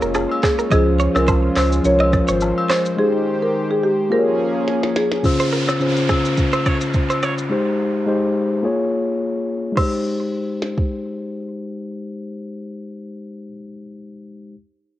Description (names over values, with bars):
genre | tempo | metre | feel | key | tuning
afrobeats | 106 BPM | 4/4 | swing 55% on 16ths | Ab major | A4 = 440 Hz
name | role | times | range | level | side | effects
mellow tine electric piano | accompaniment | 0.0-14.6 s | Db3 to Db5 | -21 LUFS | left 2 dB | low-pass filter, cassette tape
warm analog pad | sustained chords | 0.0-5.2 s | Eb3 to C5 | -25 LUFS | right 1 dB | chorus, cassette tape
direct-recorded clean electric guitar | riff | 0.0-9.9 s | Ab4 to Eb5 | -25 LUFS | right 5 dB | low-pass filter, cassette tape, tape echo
warm sub bass | bass | 0.0-2.5 s | F1 to Db2 | -21 LUFS | right 1 dB | none
minimal click drum kit | drums | 0.0-10.9 s | crash cymbal, handclaps, hi-hat, kick drum, rim click, shaker, snare drum | -22 LUFS | equal | cassette tape
woodblock and agogo bells | percussion | 0.2-10.0 s | none | -28 LUFS | left 2 dB | none
marimba with medium mallets | melody | 0.4-5.1 s | G4 to Db5 | -21 LUFS | equal | cassette tape
downlifter | sound effects | 5.2-9.8 s | none | -29 LUFS | right 2 dB | none
room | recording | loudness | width
light reverb | home recording on cassette | -16 LUFS | side -14 dB against mid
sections
0.0-5.2 A section; 5.2-9.8 B section; 9.8-12.0 C section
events
break 3.0-5.2, 7.5-9.8; drum fill 4.7-5.2; filter sweep 5.2-9.8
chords
0.0 Bbm7; 0.7 Dbmaj7; 3.0 Abmaj7; 4.1 Bbm7; 5.2 Dbmaj7; 7.5 Abmaj7; 8.6 Bbm7; 9.8 Abmaj7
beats
0.15 | 0.71 1.28 1.85 2.41 | 2.98 3.54 4.11 4.68 | 5.24 5.81 6.38 6.94 | 7.51 8.07 8.64 9.21 | 9.77 10.34 10.90 11.47